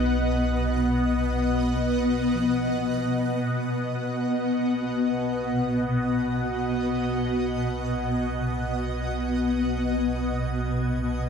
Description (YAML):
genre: ambient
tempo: free time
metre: none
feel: none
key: B major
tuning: A4 = 440 Hz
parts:
  - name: shimmering ambient pad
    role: sustained chords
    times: 0.0-11.3 s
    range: B2 to F#5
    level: -24 LUFS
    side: left 1 dB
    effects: chorus, built-in reverb, phaser
  - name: muted felt-like synth keys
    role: arpeggios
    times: 0.0-3.3 s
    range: E#3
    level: -43 LUFS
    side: equal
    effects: none
  - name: round analog bass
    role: bass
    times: 0.0-11.3 s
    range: B1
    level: -32 LUFS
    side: right 1 dB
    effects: none
  - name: drifting glass-harmonics texture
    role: texture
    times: 0.0-11.3 s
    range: F#6 to G#6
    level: -49 LUFS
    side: right 2 dB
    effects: none
room: wet huge ambient reverb, RT60 9.3 s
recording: dark, warm production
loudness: -23 LUFS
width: side -6 dB against mid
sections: 0.0-3.3 A section; 3.3-11.3 B section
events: fade-in on analog synth bass 3.3-11.3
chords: 0.0 B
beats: free time